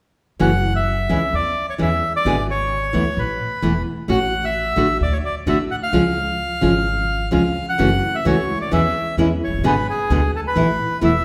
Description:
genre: tango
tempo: 130 BPM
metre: 4/4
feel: rubato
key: F# minor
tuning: A4 = 440 Hz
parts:
  - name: bandoneon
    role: melody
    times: 0.4-11.2 s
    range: G#4 to F#5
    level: -24 LUFS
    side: equal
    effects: none
  - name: nylon-string guitar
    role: accompaniment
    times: 0.4-11.1 s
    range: B2 to G#4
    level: -23 LUFS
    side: equal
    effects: none
  - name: upright bass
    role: bass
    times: 0.4-11.2 s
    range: E1 to E2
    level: -26 LUFS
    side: equal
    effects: none
room: wet recital hall reverb, RT60 1.4 s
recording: recorded in a church or concert hall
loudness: -19 LUFS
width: mono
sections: 0.4-7.8 A section; 7.8-11.2 B section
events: none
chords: 0.4 F#7(no3); 1.3 N.C.; 2.3 G#dim; 3.2 Asus2; 4.1 F#m/A; 5.0 D5; 5.9 C#; 7.8 F#m7; 8.7 C#m/E; 9.6 G#dim; 10.6 Asus2

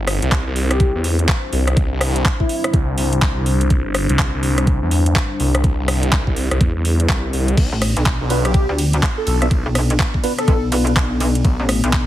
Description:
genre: bass house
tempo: 124 BPM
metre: 4/4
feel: swing 62% on 16ths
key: unclear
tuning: A4 = 441 Hz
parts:
  - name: dark analog pad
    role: sustained chords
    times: 0.0-12.1 s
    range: G3 to D5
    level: -25 LUFS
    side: left 2 dB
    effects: lush chorus, sidechain pumping
  - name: phased detuned saw bass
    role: bass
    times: 0.0-11.6 s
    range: G1 to E2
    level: -18 LUFS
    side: equal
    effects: phaser, sidechain pumping
  - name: garage drum kit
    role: drums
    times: 0.1-12.1 s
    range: crash cymbal, handclaps, hi-hat, ride cymbal, rim click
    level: -23 LUFS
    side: equal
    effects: none
  - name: electronic kick drum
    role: drums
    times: 0.3-12.0 s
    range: none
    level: -17 LUFS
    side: equal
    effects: none
  - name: airy dreamy lead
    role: melody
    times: 0.7-2.7, 8.4-10.6 s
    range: E4 to A4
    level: -25 LUFS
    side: left 1 dB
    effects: chorus, tape echo
  - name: pulsing pluck wobble bass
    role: bass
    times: 7.7-12.1 s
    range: A1 to D2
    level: -18 LUFS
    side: equal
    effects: chorus, overdrive, sidechain pumping
  - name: percussive organ stab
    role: stabs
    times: 8.3-10.9 s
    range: B3 to E5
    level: -24 LUFS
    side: right 2 dB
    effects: wide subtle chorus, sidechain pumping, tape echo
room: digital ambience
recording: heavily compressed radio sound, multiband compression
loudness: -15 LUFS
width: side -13 dB against mid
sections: 0.0-12.1 A section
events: none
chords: 0.0 Cadd9; 7.6 Bdim

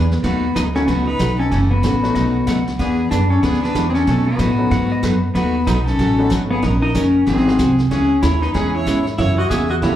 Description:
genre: country, western swing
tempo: 188 BPM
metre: 4/4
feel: swing 61% on 8ths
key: B mixolydian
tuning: A4 = 440 Hz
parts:
  - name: pedal steel guitar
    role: melody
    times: 0.0-10.0 s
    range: B3 to G#4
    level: -18 LUFS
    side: left 2 dB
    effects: slapback echo
  - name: clean lap steel guitar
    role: second line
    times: 0.0-5.3 s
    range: B4 to F#5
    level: -31 LUFS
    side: left 2 dB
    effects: slapback echo
  - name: clear fiddle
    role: second line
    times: 0.0-10.0 s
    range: F#4 to E5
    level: -28 LUFS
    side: right 2 dB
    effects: slapback echo
  - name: picked steel-string acoustic guitar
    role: accompaniment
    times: 0.0-10.0 s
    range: B2 to A#4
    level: -23 LUFS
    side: right 2 dB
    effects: none
  - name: upright bass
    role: bass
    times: 0.0-10.0 s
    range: F#1 to B2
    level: -20 LUFS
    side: equal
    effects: none
  - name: vintage brush drum kit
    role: drums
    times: 0.1-10.0 s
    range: brushed snare drum, hi-hat, kick drum, snare drum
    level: -28 LUFS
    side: equal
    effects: none
  - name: clear upright piano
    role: accompaniment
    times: 0.7-10.0 s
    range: G#3 to G#4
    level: -26 LUFS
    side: left 2 dB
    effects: slapback echo
room: moderate digital room reverb, RT60 1.1 s, small room reverb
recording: live gig heard through the venue's PA, club reverb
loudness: -15 LUFS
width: side -11 dB against mid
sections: 0.0-10.0 A section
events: none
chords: 0.2 B9; 1.5 F#m7; 2.2 B9; 2.8 E9; 4.1 B9; 6.6 D#m7; 7.3 G#7alt; 7.9 C#m7; 9.2 F#9

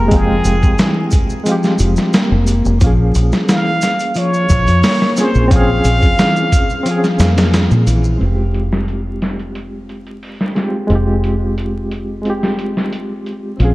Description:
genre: trip hop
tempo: 89 BPM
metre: 4/4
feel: straight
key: F harmonic minor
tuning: A4 = 440 Hz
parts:
  - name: trumpet with plunger mute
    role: melody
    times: 0.0-7.5 s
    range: Ab4 to F5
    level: -20 LUFS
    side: right 1 dB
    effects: tape echo
  - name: barky reed electric piano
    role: accompaniment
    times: 0.0-13.7 s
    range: Ab3 to G5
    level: -20 LUFS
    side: equal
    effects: overdrive, fast tremolo, vintage 12-bit sampler grit, low-pass filter, tape echo
  - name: electric guitar at the edge of break-up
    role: arpeggios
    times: 0.0-8.2, 13.6-13.7 s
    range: E3 to Bb3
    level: -20 LUFS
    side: left 1 dB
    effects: tape echo
  - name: deep dub fingered electric bass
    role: bass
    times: 0.0-13.7 s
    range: F1 to Bb2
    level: -15 LUFS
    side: equal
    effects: none
  - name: trip hop sampler-style drum kit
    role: drums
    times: 0.1-13.7 s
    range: hi-hat, kick drum, snare drum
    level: -16 LUFS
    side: equal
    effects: low-pass filter on hats, low-pass filter on snare, low-pass filter on kick, low-pass filter on room
  - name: maracas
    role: percussion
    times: 0.1-8.2 s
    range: none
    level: -32 LUFS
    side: equal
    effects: none
room: moderate plate reverb, RT60 2.2 s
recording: dreamy mix soaked in reverb, vinyl crackle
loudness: -12 LUFS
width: side -19 dB against mid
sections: 0.0-8.2 A section; 8.2-13.7 B section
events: filter sweep on reed electric piano 8.2-13.7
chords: 0.0 Fmadd9; 2.8 Bbm9; 8.2 Fmadd9

